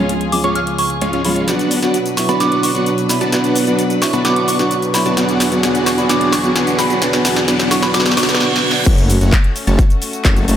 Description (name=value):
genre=EDM, festival progressive house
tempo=130 BPM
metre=4/4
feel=straight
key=F# minor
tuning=A4 = 440 Hz
part: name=felt-muted upright piano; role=accompaniment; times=0.0-8.9 s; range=E#3 to F#4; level=-19 LUFS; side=right 1 dB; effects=sidechain pumping, digital delay
part: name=warm chamber string section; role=sustained chords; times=0.0-10.6 s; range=C#2 to B4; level=-24 LUFS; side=equal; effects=sidechain pumping
part: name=dense compressed supersaw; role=riff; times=0.0-10.6 s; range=G#3 to A5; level=-19 LUFS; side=equal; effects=sidechain pumping, low-pass filter, digital delay
part: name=big-room dance drum kit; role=drums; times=0.1-10.6 s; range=crash cymbal, handclaps, hi-hat, shaker, snare drum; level=-20 LUFS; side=left 1 dB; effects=high-pass filter on hats, small room reverb, high-pass filter on snare, high-pass filter on perc, high-pass filter on cymbals
part: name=soft synth bell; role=melody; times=0.3-8.4 s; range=B5 to E#6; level=-21 LUFS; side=right 1 dB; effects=chorus, phaser, digital delay
part: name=riser and reverse cymbal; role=sound effects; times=4.7-8.9 s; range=none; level=-25 LUFS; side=right 1 dB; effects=none
part: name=detuned saw bass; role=bass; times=8.9-10.6 s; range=F#1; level=-15 LUFS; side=equal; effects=sidechain pumping
part: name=electronic kick drum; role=drums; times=8.9-10.3 s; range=none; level=-13 LUFS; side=equal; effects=small room reverb
room=moderate lush hall reverb, RT60 1.8 s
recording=none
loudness=-13 LUFS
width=side -10 dB against mid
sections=0.0-8.9 A section; 8.9-10.6 B section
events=build-up 0.0-8.9; drum fill 1.5-8.4, 8.4-8.9; riser 4.7-8.4; reverse cymbal 7.9-8.9; drop 8.9-10.6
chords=0.0 C#; 1.5 Bm; 5.2 Eadd9; 8.9 F#m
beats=0.10 0.56 1.02 | 1.48 1.94 2.40 2.87 | 3.33 3.79 4.25 4.71 | 5.17 5.63 6.09 6.56 | 7.02 7.48 7.94 8.40 | 8.87 9.33 9.79 10.25